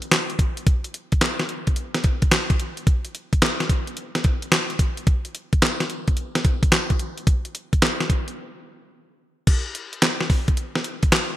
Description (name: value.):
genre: R&B.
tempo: 109 BPM.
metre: 4/4.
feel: swing 66% on 16ths.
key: none.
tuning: none.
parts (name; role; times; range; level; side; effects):
clean 12-bit digital drum machine; drums; 0.0-11.3 s; crash cymbal, handclaps, hi-hat, kick drum, snare drum; -19 LUFS; equal; gated reverb.
room: light reverb.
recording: bright 1980s-style digital production.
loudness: -20 LUFS.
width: side -14 dB against mid.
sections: 0.0-9.5 A section; 9.5-11.4 B section.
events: break 8.4-9.5.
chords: none.